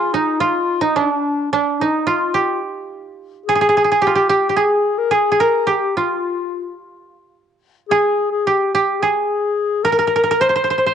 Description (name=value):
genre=turkish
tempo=108 BPM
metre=4/4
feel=straight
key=unclear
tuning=A4 = 440 Hz
part: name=koto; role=melody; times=0.0-10.9 s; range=D4-30c to C5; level=-17 LUFS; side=right 5 dB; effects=none
part: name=mellow clarinet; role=second line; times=0.0-10.9 s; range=D4-32c to C5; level=-20 LUFS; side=left 9 dB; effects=cassette tape
room=light reverb, small room ambience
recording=home recording on cassette, nothing above 10.7 kHz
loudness=-15 LUFS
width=side -8 dB against mid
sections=0.0-10.9 A section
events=none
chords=none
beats=| 0.40 0.96 1.51 2.07 | 2.63 3.18 3.74 4.29 | 4.85 5.41 5.96 6.52 | 7.07 7.63 8.18 8.74 | 9.29 9.85 10.40